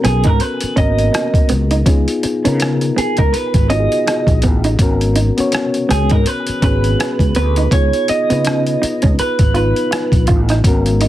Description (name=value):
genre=R&B, neo-soul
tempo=82 BPM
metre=4/4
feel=swing 59% on 16ths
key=unclear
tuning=A4 = 439 Hz
part: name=electric guitar through a small old amp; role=melody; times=0.0-10.2 s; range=G#4 to D#5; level=-19 LUFS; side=right 4 dB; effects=harmonic tremolo, analog delay
part: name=hollow-body jazz guitar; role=second line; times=0.0-11.1 s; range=B3 to E#4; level=-21 LUFS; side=right 3 dB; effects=none
part: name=mellow reed electric piano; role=accompaniment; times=0.0-11.1 s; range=A#3 to C#5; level=-20 LUFS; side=left 3 dB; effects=none
part: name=fretless electric bass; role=bass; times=0.0-11.1 s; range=G#1 to C#3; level=-16 LUFS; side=equal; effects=ensemble chorus
part: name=boom bap sampler-style drum kit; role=drums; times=0.0-11.1 s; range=hi-hat, kick drum, rim click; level=-16 LUFS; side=equal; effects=none
room=light reverb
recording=heavily compressed radio sound, multiband compression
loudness=-12 LUFS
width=side -14 dB against mid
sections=0.0-11.1 A section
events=none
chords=0.0 G#m11; 1.9 C#9; 4.8 G#m11; 7.7 C#9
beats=0.40 1.13 | 1.86 2.59 3.32 4.06 | 4.79 5.52 6.25 6.98 | 7.71 8.45 9.18 9.91 | 10.64